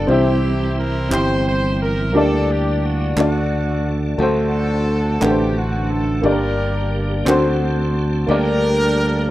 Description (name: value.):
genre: slow gospel.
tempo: 59 BPM (dotted quarters).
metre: 6/8.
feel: straight.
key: G harmonic minor.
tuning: A4 = 440 Hz.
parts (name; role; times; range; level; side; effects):
clear horn section; melody; 0.0-9.3 s; A3 to C5; -24 LUFS; equal; none.
warm upright piano; accompaniment; 0.0-9.3 s; G2 to G5; -19 LUFS; left 1 dB; none.
tonewheel organ; sustained chords; 0.0-9.3 s; D3 to F#5; -27 LUFS; right 2 dB; fast rotary speaker, overdrive, chorus vibrato.
modern bright fingered electric bass; bass; 0.0-9.3 s; G1 to D2; -20 LUFS; equal; none.
group handclap; percussion; 1.1-7.6 s; none; -28 LUFS; right 2 dB; none.
room: studio reverb.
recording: rough home demo mix.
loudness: -16 LUFS.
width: side -15 dB against mid.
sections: 0.0-9.3 A section.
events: none.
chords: 0.1 C; 2.1 Gm/D; 3.2 D; 6.2 Gm; 7.3 D7; 8.3 Gm/D.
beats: | 0.09 1.11 | 2.14 3.17 | 4.19 5.21 | 6.24 7.26 | 8.29.